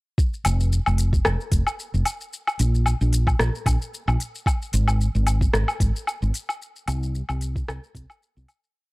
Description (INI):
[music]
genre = sunset chillout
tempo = 112 BPM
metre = 4/4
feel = swing 55% on 16ths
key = F minor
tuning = A4 = 440 Hz
[part]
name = electronic kick drum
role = drums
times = 0.2-8.1 s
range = none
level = -22 LUFS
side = equal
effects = none
[part]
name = smooth R&B drum kit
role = drums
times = 0.2-8.7 s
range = hi-hat, rim click, shaker, woodblock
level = -26 LUFS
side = left 1 dB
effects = none
[part]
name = woody fretless electric bass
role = bass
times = 0.5-8.4 s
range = F1 to C2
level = -21 LUFS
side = equal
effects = tube saturation, ensemble chorus
[sound]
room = little or no reverb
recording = dry, gritty hardware recording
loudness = -21 LUFS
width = side -23 dB against mid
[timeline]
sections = 0.2-8.8 groove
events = fade-out 5.9-8.8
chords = none